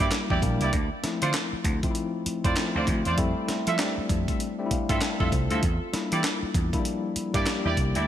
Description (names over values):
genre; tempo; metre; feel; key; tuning
R&B, new jack swing; 98 BPM; 4/4; swing 61% on 16ths; unclear; A4 = 439 Hz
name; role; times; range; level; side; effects
tine electric piano; accompaniment; 0.0-8.1 s; F3 to A5; -29 LUFS; left 4 dB; medium tremolo
warm horn section; stabs; 0.0-8.1 s; E4 to E5; -30 LUFS; right 3 dB; ping-pong delay
vintage slap bass; bass; 0.0-8.1 s; Bb1 to F3; -28 LUFS; right 1 dB; none
breakbeat sampler-style drum kit; drums; 0.0-8.1 s; handclaps, hi-hat, kick drum, snare drum; -28 LUFS; right 1 dB; gated reverb
room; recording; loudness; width
light reverb; bright 1980s-style digital production; -24 LUFS; side -11 dB against mid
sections
0.0-8.1 A section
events
tine electric piano fill 4.4-5.6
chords
0.0 Em7b5; 0.7 Dm7; 3.2 Fmaj7; 5.6 Em7b5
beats
0.12 | 0.73 1.34 1.95 2.57 | 3.18 3.79 4.40 5.01 | 5.63 6.24 6.85 7.46